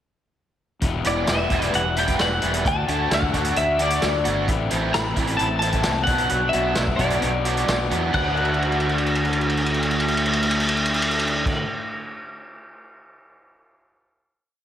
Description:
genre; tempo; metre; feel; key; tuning
indie rock; 131 BPM; 4/4; straight; D mixolydian; A4 = 440 Hz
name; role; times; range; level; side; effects
crunchy overdriven guitar; riff; 0.8-11.7 s; E2 to F#4; -28 LUFS; left 7 dB; spring reverb, slapback echo
fuzz fingered electric bass; bass; 0.8-11.5 s; E1 to E2; -26 LUFS; equal; overdrive
vintage drum kit; drums; 0.8-11.6 s; crash cymbal, hi-hat, kick drum, ride cymbal, snare drum; -25 LUFS; equal; none
twelve-string electric guitar; melody; 1.1-11.5 s; D5 to B5; -24 LUFS; left 2 dB; wide subtle chorus, digital delay
overdriven electric guitar; riff; 1.1-11.7 s; D3 to F#4; -27 LUFS; right 4 dB; ensemble chorus, slapback echo, digital delay
room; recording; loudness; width
moderate lush hall reverb, RT60 1.9 s, small room reverb; big arena sound; -19 LUFS; side -10 dB against mid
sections
0.8-8.1 pre-chorus; 8.1-11.8 final chord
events
drum fill 8.4-11.5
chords
0.8 Emadd9; 2.7 D; 4.5 Am; 6.1 Bm; 8.1 D

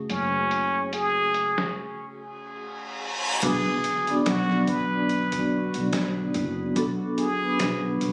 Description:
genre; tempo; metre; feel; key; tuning
trip hop; 72 BPM; 4/4; swing 55% on 16ths; unclear; A4 = 439 Hz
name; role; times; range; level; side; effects
vibraphone with soft mallets; accompaniment; 0.0-8.1 s; A3 to D5; -31 LUFS; equal; tremolo
warbly tape-like pad; sustained chords; 0.0-8.1 s; C#3 to G#4; -37 LUFS; equal; chorus, built-in reverb
upright bass; bass; 0.0-8.1 s; F#1 to B1; -34 LUFS; equal; none
trumpet with plunger mute; melody; 0.1-8.0 s; C#4 to B4; -30 LUFS; equal; vintage 12-bit sampler grit, dub echo
trip hop sampler-style drum kit; drums; 0.1-8.1 s; crash cymbal, hi-hat, kick drum, snare drum; -34 LUFS; equal; low-pass filter on hats, vintage 12-bit sampler grit, low-pass filter on snare, low-pass filter on cymbals, low-pass filter on kick, low-pass filter on room
reverse cymbal and impact; sound effects; 2.7-6.8 s; none; -33 LUFS; equal; none
room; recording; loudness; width
light reverb; recorded on a phone in the room, studio reverb; -25 LUFS; mono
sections
0.0-3.4 A section; 3.4-8.1 B section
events
break 1.8-3.4; reverse cymbal 2.7-3.4; impact 3.4-6.8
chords
0.0 F#madd9; 3.4 Bm

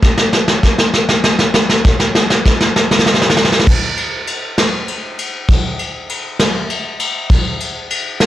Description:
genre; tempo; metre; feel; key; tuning
folk; 66 BPM (dotted quarters); 6/8; straight; none; none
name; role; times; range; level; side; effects
soft brush drum kit; drums; 0.0-8.3 s; crash cymbal, kick drum, ride cymbal, snare drum; -12 LUFS; equal; none
room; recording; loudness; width
light reverb; blown-out, overdriven recording, vinyl crackle, overdrive; -12 LUFS; side -13 dB against mid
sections
0.0-3.7 A section; 3.7-8.3 B section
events
build-up 0.0-3.7; drum fill 0.0-3.7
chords
none

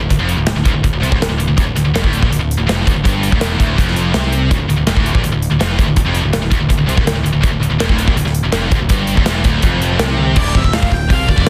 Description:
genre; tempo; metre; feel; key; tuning
heavy metal; 164 BPM; 4/4; straight; D minor; A4 = 440 Hz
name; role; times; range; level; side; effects
scooped high-gain guitar; riff; 0.0-11.5 s; D2 to C3; -24 LUFS; equal; distortion
scooped high-gain guitar; riff; 0.0-11.5 s; D2 to C3; -23 LUFS; equal; distortion
scooped high-gain guitar; riff; 0.0-10.4 s; D2 to C3; -25 LUFS; equal; distortion
growling picked electric bass; bass; 0.0-11.5 s; D1 to C2; -21 LUFS; equal; overdrive
big rock drum kit; drums; 0.1-11.5 s; crash cymbal, hi-hat, kick drum, snare drum, toms; -18 LUFS; equal; none
high-gain lead guitar; melody; 10.4-11.5 s; D5 to G5; -22 LUFS; equal; distortion
room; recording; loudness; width
little or no reverb; dense, heavily limited modern master; -15 LUFS; mono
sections
0.0-10.4 A section; 10.4-11.5 B section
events
drum fill 10.2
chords
0.0 Dm

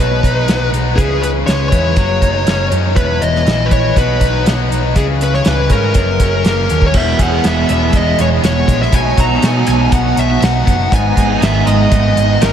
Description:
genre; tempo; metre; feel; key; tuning
indie rock; 121 BPM; 4/4; straight; B major; A4 = 438 Hz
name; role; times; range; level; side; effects
fuzz lead guitar; melody; 0.0-12.5 s; G#4 to A#5; -16 LUFS; equal; distortion, analog delay
biting overdriven guitar; riff; 0.0-12.5 s; E2 to G#4; -20 LUFS; left 8 dB; none
crunchy overdriven guitar; riff; 0.0-12.5 s; E2 to G#4; -20 LUFS; right 5 dB; ensemble chorus
picked electric bass; bass; 0.0-12.5 s; E1 to B2; -17 LUFS; equal; none
cloth-damped thuddy drum kit; drums; 0.2-12.5 s; crash cymbal, hi-hat, kick drum, snare drum; -17 LUFS; equal; none
room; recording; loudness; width
moderate huge ambient reverb, RT60 8.9 s; dreamy mix soaked in reverb; -11 LUFS; side -9 dB against mid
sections
0.0-6.9 A section; 6.9-12.5 B section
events
none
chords
0.0 B; 1.0 C#m; 2.0 F#6; 3.0 E; 4.0 B; 5.0 C#m; 6.0 F#; 6.9 E; 8.9 B; 10.9 G#m

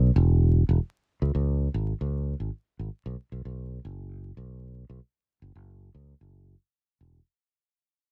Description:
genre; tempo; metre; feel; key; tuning
folktronica; 114 BPM; 4/4; straight; unclear; A4 = 444 Hz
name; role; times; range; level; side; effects
fingered electric bass; bass; 0.0-7.2 s; E1 to C#2; -27 LUFS; equal; none
room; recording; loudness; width
little or no reverb; dry, close 1970s-style studio recording, vinyl crackle; -27 LUFS; mono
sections
0.0-7.3 A section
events
fade-out 0.0-7.3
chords
none

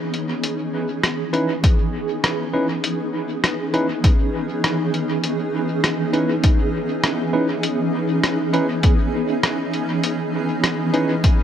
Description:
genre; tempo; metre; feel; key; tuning
ambient dub; 100 BPM; 4/4; straight; C# minor; A4 = 440 Hz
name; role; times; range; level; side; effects
granular cloud pad; sustained chords; 0.0-11.4 s; E3 to G#4; -21 LUFS; equal; built-in reverb
lo-fi sampler-style drum kit; drums; 0.1-11.4 s; hi-hat, rim click; -24 LUFS; left 1 dB; dub echo
tine electric piano; stabs; 1.3-11.1 s; C#4 to B4; -25 LUFS; right 1 dB; medium stereo tremolo, dub echo
electronic kick drum; drums; 1.6-11.4 s; none; -16 LUFS; equal; overdrive
room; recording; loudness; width
moderate lush hall reverb, RT60 2.5 s; none; -18 LUFS; side -9 dB against mid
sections
0.0-11.4 A section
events
none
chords
0.0 C#m9

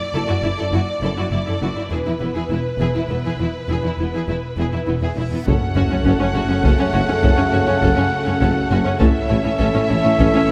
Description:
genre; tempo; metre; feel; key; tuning
cinematic, epic orchestral film score; 68 BPM (dotted quarters); 12/8; straight; F# minor; A4 = 441 Hz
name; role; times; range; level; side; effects
clear symphonic violin section; melody; 0.0-10.5 s; B4 to F#5; -30 LUFS; equal; none
clear symphonic violin section; second line; 0.1-10.5 s; B3 to A4; -31 LUFS; equal; none
rich symphonic viola section; accompaniment; 0.1-10.4 s; C#4 to E4; -27 LUFS; equal; none
clear symphonic cello section; bass; 0.1-10.5 s; E2 to A2; -26 LUFS; equal; none
clear symphonic double bass section; bass; 0.1-10.5 s; E1 to A1; -26 LUFS; equal; none
reverse cymbal and sub drop; sound effects; 5.4-9.0 s; none; -30 LUFS; equal; none
mellow French horn section; sustained chords; 5.5-10.5 s; C#4 to A4; -30 LUFS; equal; none
rich symphonic string section; sustained chords; 5.5-10.5 s; A3 to C#5; -29 LUFS; equal; none
warm trombone section; sustained chords; 5.5-10.5 s; C#3 to A3; -27 LUFS; equal; none
warm trumpet; stabs; 5.5-10.5 s; E5 to F#5; -26 LUFS; equal; none
warm tuba; bass; 5.5-10.3 s; F#1 to A1; -27 LUFS; equal; none
taiko ensemble; drums; 5.5-10.5 s; none; -24 LUFS; equal; none
room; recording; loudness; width
moderate scoring stage reverb, RT60 1.8 s; none; -19 LUFS; mono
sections
0.0-5.5 A section; 5.5-10.5 B section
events
build-up 0.0-5.5; reverse cymbal 5.4; impact 5.5-9.0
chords
0.0 Dadd9/F#; 1.9 E5; 5.5 F#m; 9.0 A

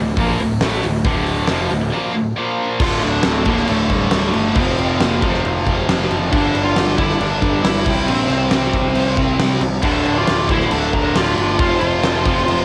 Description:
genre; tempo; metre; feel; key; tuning
hard rock; 136 BPM; 4/4; straight; D minor; A4 = 440 Hz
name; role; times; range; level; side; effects
tight distorted guitar; riff; 0.0-12.6 s; D2 to C4; -22 LUFS; equal; distortion, cassette tape
fuzz picked electric bass; bass; 0.0-12.6 s; D1 to C2; -24 LUFS; equal; overdrive
huge arena drum kit; drums; 0.2-12.6 s; crash cymbal, hi-hat, kick drum, snare drum; -22 LUFS; equal; cassette tape
dark smooth lead guitar; melody; 2.8-12.6 s; G3 to F4; -23 LUFS; equal; overdrive, cassette tape
octave-fuzz lead guitar; second line; 9.9-12.6 s; A4 to D5; -27 LUFS; equal; distortion, cassette tape, analog delay
room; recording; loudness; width
light reverb; home recording on cassette; -17 LUFS; mono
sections
0.0-2.8 A section; 2.8-12.6 B section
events
none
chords
0.0 Dm; 2.4 Bb5; 2.8 D5; 4.6 F5; 6.3 G5; 7.9 C5; 9.8 Dm; 11.6 F5

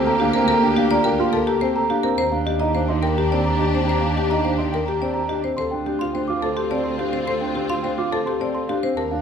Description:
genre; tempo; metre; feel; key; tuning
classical, minimalist pattern music; 106 BPM; 3/4; straight; unclear; A4 = 440 Hz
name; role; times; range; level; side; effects
marimba with hard mallets; melody; 0.0-9.2 s; G4 to F5; -25 LUFS; left 7 dB; none
rich symphonic string section; sustained chords; 0.0-9.2 s; Bb3 to Bb4; -26 LUFS; left 1 dB; none
celesta; arpeggios; 0.0-9.2 s; Eb5 to D6; -26 LUFS; right 2 dB; none
dark grand piano; arpeggios; 0.0-9.2 s; C4 to C5; -25 LUFS; right 3 dB; none
warm double bass; bass; 0.0-9.2 s; D2 to Eb2; -26 LUFS; right 3 dB; none
room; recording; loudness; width
wet large studio reverb, RT60 1.1 s; heard from further back in the room; -18 LUFS; side -7 dB against mid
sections
0.0-9.2 A section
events
none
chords
0.0 Gm9/D; 2.2 Ebmaj9; 5.6 Dm7

